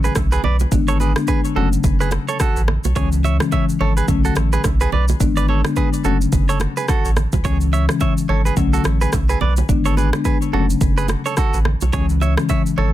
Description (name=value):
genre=afrobeats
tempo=107 BPM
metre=4/4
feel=swing 58% on 16ths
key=F# minor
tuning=A4 = 440 Hz
part: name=marimba with soft mallets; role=accompaniment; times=0.0-12.5 s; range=C#3 to D4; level=-22 LUFS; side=left 5 dB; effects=plate reverb
part: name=direct-recorded clean electric guitar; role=riff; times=0.0-12.9 s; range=F#4 to E5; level=-24 LUFS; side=right 6 dB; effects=ping-pong delay
part: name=warm sub bass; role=bass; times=0.0-12.9 s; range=F#1 to C#2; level=-18 LUFS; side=equal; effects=none
part: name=afro-pop drum kit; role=drums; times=0.0-12.8 s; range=kick drum, rim click, shaker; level=-21 LUFS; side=equal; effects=soft clipping on snare
part: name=bongos and congas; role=percussion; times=0.0-12.9 s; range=none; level=-28 LUFS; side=right 9 dB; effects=none
room=light reverb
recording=dense, heavily limited modern master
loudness=-15 LUFS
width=side -13 dB against mid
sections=0.0-12.9 A section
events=none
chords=0.0 Bm7; 0.7 G#dim; 1.6 F#m; 3.0 C#m; 4.1 Bm7; 5.2 G#dim; 6.0 F#m; 7.4 C#m; 8.6 Bm7; 9.7 G#dim; 10.5 F#m; 11.9 C#m